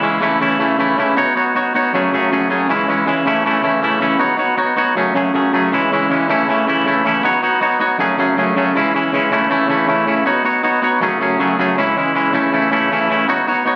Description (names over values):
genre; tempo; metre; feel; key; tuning
rock; 158 BPM; 4/4; straight; unclear; A4 = 440 Hz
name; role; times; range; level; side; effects
twangy electric guitar; solo; 0.0-13.8 s; F#2 to C#5; -16 LUFS; equal; slapback echo
room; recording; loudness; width
light reverb; recorded on a phone in the room, club reverb; -16 LUFS; mono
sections
0.0-4.2 A section; 4.2-13.8 A section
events
none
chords
0.2 A/C#; 1.2 Badd9; 1.9 F#madd9; 2.7 C#m; 3.3 A/C#; 4.2 Badd9; 5.0 F#madd9; 5.7 C#m; 6.3 A/C#; 7.2 Badd9; 8.0 F#madd9; 8.7 C#m; 9.3 A/C#; 10.3 Badd9; 11.0 F#madd9; 11.8 C#m; 12.3 A/C#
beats
0.03 0.41 0.79 | 1.17 1.55 1.93 2.31 | 2.69 3.07 3.45 3.83 | 4.21 4.59 4.97 5.35 | 5.72 6.10 6.48 6.86 | 7.24 7.62 7.99 8.37 | 8.75 9.13 9.51 9.88 | 10.26 10.64 11.02 11.40 | 11.78 12.15 12.53 12.91 | 13.29 13.67